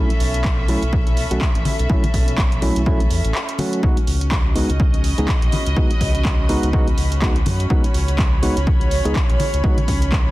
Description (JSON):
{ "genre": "deep house", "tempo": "124 BPM", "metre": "4/4", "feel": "swing 58% on 16ths", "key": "C# minor", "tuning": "A4 = 440 Hz", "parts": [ { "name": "tine electric piano", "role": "stabs", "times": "0.0-9.8 s", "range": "F#3 to G#4", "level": "-24 LUFS", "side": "equal", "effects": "overdrive, vintage 12-bit sampler grit, sidechain pumping, ping-pong delay" }, { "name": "round analog bass", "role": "bass", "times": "0.0-10.3 s", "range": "A1 to F#2", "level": "-21 LUFS", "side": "equal", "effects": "sidechain pumping" }, { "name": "warm studio string section", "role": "texture", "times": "0.0-10.3 s", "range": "C#4 to B5", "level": "-27 LUFS", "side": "right 1 dB", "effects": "sidechain pumping" }, { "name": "punchy analog drum machine", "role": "drums", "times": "0.1-10.2 s", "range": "handclaps, hi-hat", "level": "-28 LUFS", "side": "right 1 dB", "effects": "none" }, { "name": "electronic kick drum", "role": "drums", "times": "0.4-10.2 s", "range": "none", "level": "-18 LUFS", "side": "equal", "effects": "none" }, { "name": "congas", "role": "percussion", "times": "1.7-9.9 s", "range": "none", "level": "-26 LUFS", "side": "left 2 dB", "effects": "none" } ], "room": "little or no reverb", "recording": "dense, heavily limited modern master, vinyl crackle", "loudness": "-16 LUFS", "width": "side -17 dB against mid", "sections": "0.0-10.3 A section", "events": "break 3.3-3.8", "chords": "0.0 B9sus4; 3.8 C#9sus4" }